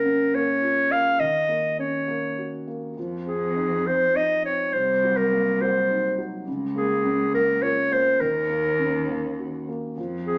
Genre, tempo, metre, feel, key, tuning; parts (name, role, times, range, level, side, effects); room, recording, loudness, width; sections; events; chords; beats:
acoustic folk-pop ballad; 103 BPM; 3/4; straight; A4 = 440 Hz
clear clarinet; melody; 0.0-10.4 s; Ab4 to F5; -24 LUFS; equal
felt-muted upright piano; accompaniment; 0.0-10.4 s; C3 to Gb4; -31 LUFS; equal
warm cello; bass; 3.0-10.4 s; C2 to F2; -33 LUFS; equal
wet stone room reverb, RT60 0.9 s; band playing live in one room, small speaker sound; -24 LUFS; mono
0.0-10.0 A section
0.0 Bbm/Db; 1.2 Ebm7; 3.0 Fm7; 4.7 Cm7b5; 6.5 Bbm/Db; 8.2 Ebm7
0.04 0.62 | 1.21 1.79 2.38 | 2.97 3.56 4.15 | 4.73 5.31 5.89 | 6.47 7.05 7.63 | 8.22 8.80 9.39 | 9.98